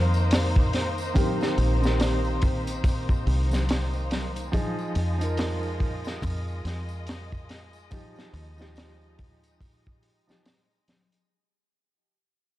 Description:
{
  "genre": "trip hop",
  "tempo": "71 BPM",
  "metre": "4/4",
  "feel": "swing 60% on 16ths",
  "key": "unclear",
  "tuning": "A4 = 438 Hz",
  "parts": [
    { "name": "clear upright piano", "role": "accompaniment", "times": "0.0-10.4 s", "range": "Eb3 to C5", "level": "-32 LUFS", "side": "right 1 dB", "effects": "tremolo, vintage 12-bit sampler grit, tape echo" },
    { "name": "muted studio violin section", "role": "sustained chords", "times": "0.0-11.3 s", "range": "Ab3 to Eb5", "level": "-34 LUFS", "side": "left 1 dB", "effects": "none" },
    { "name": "deep dub fingered electric bass", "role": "bass", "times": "0.0-9.8 s", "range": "Bb1 to F2", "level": "-27 LUFS", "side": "equal", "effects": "none" },
    { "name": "tambourine and congas", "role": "percussion", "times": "0.1-11.3 s", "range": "none", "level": "-39 LUFS", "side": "left 3 dB", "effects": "none" },
    { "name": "crunchy breakbeat drum kit", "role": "drums", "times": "0.3-11.3 s", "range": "hi-hat, kick drum, snare drum", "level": "-26 LUFS", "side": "equal", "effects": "vintage 12-bit sampler grit" }
  ],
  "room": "small room ambience",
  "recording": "dark, warm production",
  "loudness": "-23 LUFS",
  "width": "side -15 dB against mid",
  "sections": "0.0-11.3 A section",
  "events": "fade-out 0.0-11.3; filter sweep on fingered electric bass 0.0-11.3",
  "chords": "0.0 Cm7; 4.5 Fm7"
}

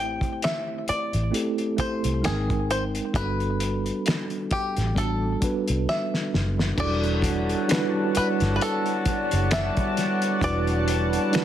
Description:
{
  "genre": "R&B, neo-soul",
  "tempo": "66 BPM",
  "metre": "4/4",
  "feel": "swing 55% on 16ths",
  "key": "unclear",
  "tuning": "A4 = 440 Hz",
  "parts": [
    { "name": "bluegrass banjo", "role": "melody", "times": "0.0-11.4 s", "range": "G4 to G5", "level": "-30 LUFS", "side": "left 1 dB", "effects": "tape echo" },
    { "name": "mellow tine electric piano", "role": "accompaniment", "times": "0.0-11.4 s", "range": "F#3 to G5", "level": "-27 LUFS", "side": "right 2 dB", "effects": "medium stereo tremolo" },
    { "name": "vintage muted fingered electric bass", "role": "bass", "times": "0.0-11.2 s", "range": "E1 to C2", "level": "-26 LUFS", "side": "equal", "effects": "none" },
    { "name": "cloth-damped thuddy drum kit", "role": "drums", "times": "0.2-11.4 s", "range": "crash cymbal, finger snaps, hi-hat, kick drum, snare drum", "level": "-28 LUFS", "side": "left 1 dB", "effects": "none" },
    { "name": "chorused pulse-width pad", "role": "sustained chords", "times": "7.2-11.4 s", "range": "G3 to A5", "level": "-30 LUFS", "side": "left 1 dB", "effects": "none" },
    { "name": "mellow horn section", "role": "stabs", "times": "6.8-11.4 s", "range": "D3 to F#4", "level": "-30 LUFS", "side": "left 3 dB", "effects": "none" }
  ],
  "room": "moderate studio reverb, RT60 0.8 s",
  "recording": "dense, heavily limited modern master",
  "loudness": "-22 LUFS",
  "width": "side -11 dB against mid",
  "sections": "0.0-6.8 A section; 6.8-11.4 B section",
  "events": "drum fill 5.9-6.8",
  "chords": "0.0 Am7; 2.2 G#maj9; 3.1 Gmaj9; 6.8 Em11"
}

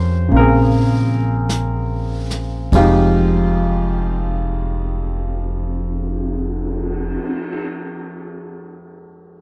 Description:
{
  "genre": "jazz ballad",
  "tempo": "47-53 BPM",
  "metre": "4/4",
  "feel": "swing 68% on 8ths",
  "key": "F minor",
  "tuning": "A4 = 435 Hz",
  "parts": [
    { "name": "clear grand piano", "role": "accompaniment", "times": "0.0-9.4 s", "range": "F2 to C5", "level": "-22 LUFS", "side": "equal", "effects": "none" },
    { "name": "upright bass", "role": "bass", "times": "0.0-7.2 s", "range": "F1 to F2", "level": "-22 LUFS", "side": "equal", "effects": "none" },
    { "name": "vintage brush drum kit", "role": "drums", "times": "0.3-7.6 s", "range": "brushed snare drum, cymbal swell, hi-hat, kick drum, ride cymbal, snare drum", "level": "-29 LUFS", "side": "equal", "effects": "none" }
  ],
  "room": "little or no reverb",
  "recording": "none",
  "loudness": "-18 LUFS",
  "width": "mono",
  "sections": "0.0-2.7 A section; 2.7-7.8 B section",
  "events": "slowing down 0.0-2.7",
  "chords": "0.3 Bbm9; 2.7 Fm9"
}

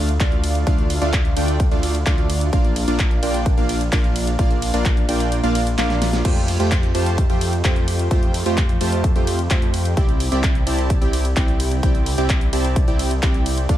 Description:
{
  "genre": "EDM, festival progressive house",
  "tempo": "129 BPM",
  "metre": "4/4",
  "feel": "straight",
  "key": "unclear",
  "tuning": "A4 = 439 Hz",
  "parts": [
    { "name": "supersaw stab", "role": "riff", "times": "0.0-13.8 s", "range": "A3 to A5", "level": "-22 LUFS", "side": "right 1 dB", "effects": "cassette tape, sidechain pumping, analog delay" },
    { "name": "wide detuned saw bass", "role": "bass", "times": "0.0-13.8 s", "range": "Bb1 to F2", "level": "-22 LUFS", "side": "equal", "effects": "chorus, sidechain pumping" },
    { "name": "big-room dance drum kit", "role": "drums", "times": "0.1-13.8 s", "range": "crash cymbal, handclaps, hi-hat, ride cymbal, snare drum", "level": "-27 LUFS", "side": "equal", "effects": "small room ambience" },
    { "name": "electronic kick drum", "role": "drums", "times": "0.2-13.8 s", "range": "none", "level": "-18 LUFS", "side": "equal", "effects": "small room ambience" }
  ],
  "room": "light reverb",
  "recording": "none",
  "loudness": "-16 LUFS",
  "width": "side -12 dB against mid",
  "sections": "0.0-6.2 A section; 6.2-13.8 A section",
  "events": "drop 0.0-6.2, 6.2-13.8; kick drops out 5.3-6.2; drum fill 5.8-6.2",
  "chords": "0.0 Dm; 2.5 Bb; 6.2 Fadd9; 10.0 Cadd9"
}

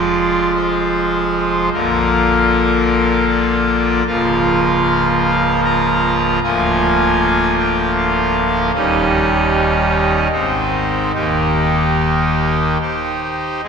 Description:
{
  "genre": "classical, chorale-style piece for pipe organ",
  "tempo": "70-78 BPM",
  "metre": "3/4",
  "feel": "straight",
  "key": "unclear",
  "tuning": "A4 = 440 Hz",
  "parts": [
    { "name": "pipe organ, trumpet", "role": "solo", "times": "0.0-13.7 s", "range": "Db1 to Bb5", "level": "-13 LUFS", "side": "equal", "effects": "none" }
  ],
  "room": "wet church reverb, RT60 2.8 s",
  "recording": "recorded in a church or concert hall",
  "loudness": "-13 LUFS",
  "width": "side -6 dB against mid",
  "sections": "0.0-13.6 A section",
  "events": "none",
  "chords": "0.0 Fm; 1.7 Bb; 4.1 Bbm/Db; 6.4 Bb7/D; 8.7 Eb7; 10.3 Ab; 11.1 Eb"
}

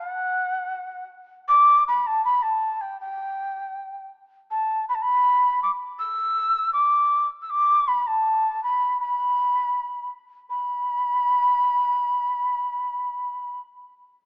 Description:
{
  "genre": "andean folk",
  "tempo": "80 BPM",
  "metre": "2/4",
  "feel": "straight",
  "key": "B minor",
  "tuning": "A4 = 439 Hz",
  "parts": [
    { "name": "reedy large quena", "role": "solo", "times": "0.0-13.6 s", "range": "F#5 to E6", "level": "-20 LUFS", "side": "equal", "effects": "none" }
  ],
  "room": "moderate plate reverb, RT60 2.7 s",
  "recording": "rough home demo mix, small speaker sound",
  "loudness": "-20 LUFS",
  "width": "side -28 dB against mid",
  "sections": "0.0-10.5 A section; 10.5-13.5 B section",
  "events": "none",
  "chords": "none"
}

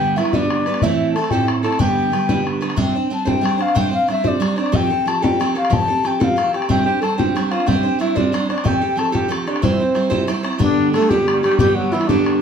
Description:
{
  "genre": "celtic folk, Celtic jig",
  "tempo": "122 BPM (dotted quarters)",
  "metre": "6/8",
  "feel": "straight",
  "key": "C major",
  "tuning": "A4 = 441 Hz",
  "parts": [
    { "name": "baroque flute", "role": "melody", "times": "0.0-12.4 s", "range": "D4 to A5", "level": "-20 LUFS", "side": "left 4 dB", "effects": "slapback echo" },
    { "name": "clear alto saxophone", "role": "second line", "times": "0.0-2.4, 6.7-12.4 s", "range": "D3 to A4", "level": "-24 LUFS", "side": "right 5 dB", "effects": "none" },
    { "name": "picked steel-string acoustic guitar", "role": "accompaniment", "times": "0.0-12.4 s", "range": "G2 to C5", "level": "-20 LUFS", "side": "right 4 dB", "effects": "none" },
    { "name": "bodhran", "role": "percussion", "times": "0.2-12.3 s", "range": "none", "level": "-22 LUFS", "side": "left 2 dB", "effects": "none" }
  ],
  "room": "wet studio ambience, RT60 0.5 s",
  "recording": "heard from further back in the room",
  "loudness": "-15 LUFS",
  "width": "side -7 dB against mid",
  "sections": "0.0-2.8 A section; 2.8-10.6 B section; 10.6-12.4 A section",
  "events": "none",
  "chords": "0.0 G; 0.8 Am; 1.8 G; 2.8 Csus2; 4.7 Fadd9; 6.7 Csus2; 8.7 Fadd9; 9.6 C; 10.6 G"
}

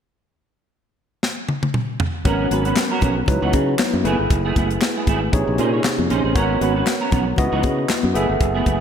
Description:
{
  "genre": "early-eighties boogie funk",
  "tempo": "117 BPM",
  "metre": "4/4",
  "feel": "swing 56% on 16ths",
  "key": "unclear",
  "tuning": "A4 = 440 Hz",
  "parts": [
    { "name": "tight funk drum kit", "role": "drums", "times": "1.2-8.8 s", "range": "handclaps, hi-hat, kick drum, snare drum, toms", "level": "-22 LUFS", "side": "equal", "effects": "none" },
    { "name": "barky tine electric piano", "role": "accompaniment", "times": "2.2-8.8 s", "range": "B#2 to E5", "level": "-22 LUFS", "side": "left 1 dB", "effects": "overdrive, auto-pan" },
    { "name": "semi-hollow electric guitar", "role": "riff", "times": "2.2-8.8 s", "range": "E3 to C#5", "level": "-24 LUFS", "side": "right 4 dB", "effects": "ensemble chorus" },
    { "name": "modern bright fingered electric bass", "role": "bass", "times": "2.3-8.8 s", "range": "F#1 to C#3", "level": "-22 LUFS", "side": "equal", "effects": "none" },
    { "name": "congas", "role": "percussion", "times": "2.5-8.8 s", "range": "none", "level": "-28 LUFS", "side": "left 5 dB", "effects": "none" }
  ],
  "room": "moderate lush hall reverb, RT60 1.9 s",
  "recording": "dreamy mix soaked in reverb",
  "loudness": "-17 LUFS",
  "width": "side -8 dB against mid",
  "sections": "0.2-2.3 A section; 2.3-8.8 B section",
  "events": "drum fill 1.2-2.3",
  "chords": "0.2 N.C.; 2.3 G#m11; 3.3 C#m11; 4.0 F#m11; 5.3 A#m11; 6.4 G#m11; 7.4 C#m11; 8.2 F#m11"
}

